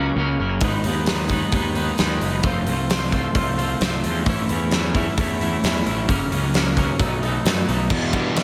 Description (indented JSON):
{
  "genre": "quiet-loud alternative rock",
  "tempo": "132 BPM",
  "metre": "4/4",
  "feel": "straight",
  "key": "unclear",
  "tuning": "A4 = 440 Hz",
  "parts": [
    { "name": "twelve-string electric guitar", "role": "arpeggios", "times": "0.0-8.4 s", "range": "F#2 to F4", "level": "-26 LUFS", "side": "equal", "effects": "harmonic tremolo" },
    { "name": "fuzz picked electric bass", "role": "bass", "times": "0.0-8.3 s", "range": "F1 to G2", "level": "-26 LUFS", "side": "equal", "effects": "overdrive" },
    { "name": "big rock drum kit", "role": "drums", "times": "0.6-8.4 s", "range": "crash cymbal, hi-hat, kick drum, ride cymbal, snare drum", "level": "-25 LUFS", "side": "equal", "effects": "none" },
    { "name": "crunchy overdriven guitar", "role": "riff", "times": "7.9-8.4 s", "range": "E2 to E3", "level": "-25 LUFS", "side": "equal", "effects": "none" }
  ],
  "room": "moderate lush hall reverb, RT60 1.9 s",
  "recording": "big arena sound",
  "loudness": "-21 LUFS",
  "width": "mono",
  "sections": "0.0-7.9 A section",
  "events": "none",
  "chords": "0.0 F#; 0.6 G#m; 2.4 F; 4.3 A; 6.1 F#; 7.0 B7; 7.9 Em",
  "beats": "0.17 | 0.62 1.08 1.53 1.99 | 2.44 2.90 3.35 3.81 | 4.26 4.72 5.18 5.63 | 6.09 6.54 7.00 7.45 | 7.91 8.36"
}